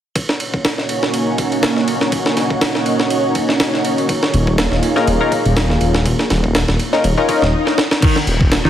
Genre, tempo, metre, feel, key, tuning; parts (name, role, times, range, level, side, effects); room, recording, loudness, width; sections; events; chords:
breakbeat, breaks; 122 BPM; 4/4; swing 55% on 16ths; Eb minor; A4 = 439 Hz
lush unison pad; sustained chords; 0.4-8.7 s; Bb3 to Db5; -19 LUFS; right 1 dB; chorus, phaser, sidechain pumping
breakbeat sampler-style drum kit; drums; 0.2-8.7 s; crash cymbal, kick drum, ride cymbal, snare drum; -18 LUFS; equal; high-pass filter on kick, high-pass filter on cymbals, high-pass filter on snare
detuned saw bass; bass; 4.3-8.7 s; Eb1; -16 LUFS; equal
band-passed chord stab; stabs; 5.0-7.4 s; Db4 to Bb4; -18 LUFS; left 4 dB; chorus, phaser, digital delay
swell; sound effects; 7.2-8.0 s; -23 LUFS; left 3 dB
electric guitar at the edge of break-up; riff; 8.0-8.7 s; Eb3; -18 LUFS; equal; tube saturation, vintage 12-bit sampler grit, digital delay
light reverb; heavily compressed radio sound; -14 LUFS; side -10 dB against mid
0.2-8.0 A section
swell 7.2-8.0; drum fill 7.7-8.0
0.2 Ebm7; 4.1 Db69/Eb; 8.0 Ebm7